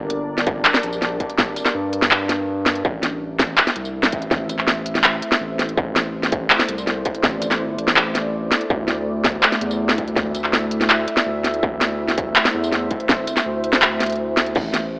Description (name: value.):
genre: half-time drum and bass.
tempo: 164 BPM.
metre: 4/4.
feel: half-time.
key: unclear.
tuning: A4 = 440 Hz.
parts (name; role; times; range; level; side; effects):
deep dark ambient pad; sustained chords; 0.0-15.0 s; G3 to E5; -25 LUFS; equal; chorus, built-in reverb, sidechain pumping.
saturated sub bass; bass; 0.0-15.0 s; G1 to G2; -27 LUFS; equal; tube saturation.
industrial drum kit; drums; 0.1-14.8 s; crash cymbal, handclaps, hi-hat, snare drum, tambourine; -17 LUFS; equal; none.
electronic kick drum; drums; 0.5-14.6 s; none; -24 LUFS; equal; distortion.
room: moderate echo chamber reverb, RT60 1.4 s.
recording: dry, gritty hardware recording, cassette tape, AM radio sound.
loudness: -17 LUFS.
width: side -28 dB against mid.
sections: 0.0-14.6 A section.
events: drop 0.0-14.6.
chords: 0.0 Gm; 2.8 Am; 8.7 Dsus2.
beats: 0.28 0.65 1.02 | 1.38 1.75 2.11 2.48 | 2.85 3.21 3.58 3.94 | 4.31 4.67 5.04 5.41 | 5.77 6.14 6.50 6.87 | 7.24 7.60 7.97 8.33 | 8.70 9.06 9.43 9.80 | 10.16 10.53 10.89 11.26 | 11.63 11.99 12.36 12.72 | 13.09 13.46 13.82 14.19 | 14.55 14.92.